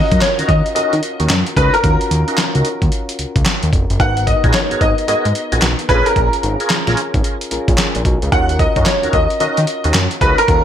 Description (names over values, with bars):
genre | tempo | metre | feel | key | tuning
R&B, new jack swing | 111 BPM | 4/4 | swing 63% on 16ths | Eb minor | A4 = 440 Hz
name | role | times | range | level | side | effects
warm grand piano | melody | 0.0-10.6 s | Bb4 to Gb5 | -17 LUFS | equal | ensemble chorus
soft electric-piano-like synth keys | accompaniment | 0.0-10.6 s | Cb4 to F5 | -24 LUFS | left 2 dB | chorus
fat analog bass | bass | 0.0-10.6 s | F1 to Eb3 | -17 LUFS | equal | none
tonewheel organ | stabs | 0.1-10.4 s | Cb4 to Bb4 | -22 LUFS | right 1 dB | overdrive, chorus vibrato, slow rotary speaker, digital delay
dusty soul sampler-style drum kit | drums | 0.1-10.6 s | handclaps, hi-hat, kick drum, snare drum | -17 LUFS | equal | overdrive, gated reverb
room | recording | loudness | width
moderate plate reverb, RT60 1.2 s | bright 1980s-style digital production | -13 LUFS | side -9 dB against mid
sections
0.0-10.6 A section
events
none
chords
0.0 Ebm7; 4.0 Abm9; 5.9 Bbm7; 8.3 Ebm7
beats
0.21 0.75 1.29 | 1.83 2.38 2.92 3.46 | 4.00 4.54 5.08 5.62 | 6.16 6.70 7.24 7.78 | 8.32 8.86 9.40 9.94 | 10.48